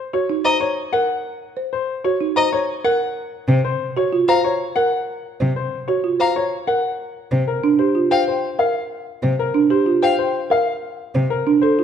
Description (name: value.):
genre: classical, minimalist pattern music.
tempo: 188 BPM.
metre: 6/4.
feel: straight.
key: unclear.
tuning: A4 = 441 Hz.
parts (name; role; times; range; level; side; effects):
bright grand piano; melody; 0.0-11.8 s; Bb4 to Bb5; -22 LUFS; left 5 dB; none.
folk marimba with soft mallets; arpeggios; 0.1-11.8 s; D4 to C5; -20 LUFS; right 3 dB; none.
rich violin; arpeggios; 0.4-10.1 s; Eb5 to F5; -24 LUFS; left 3 dB; none.
rich cello; accompaniment; 3.5-11.3 s; C3; -21 LUFS; equal; none.
room: moderate recital hall reverb, RT60 1.8 s.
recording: dark, warm production.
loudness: -17 LUFS.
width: side -8 dB against mid.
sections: 0.0-11.8 A section.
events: none.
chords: 0.0 Ebm7; 3.3 F#maj7; 7.2 Gm7; 11.0 Bbmaj7.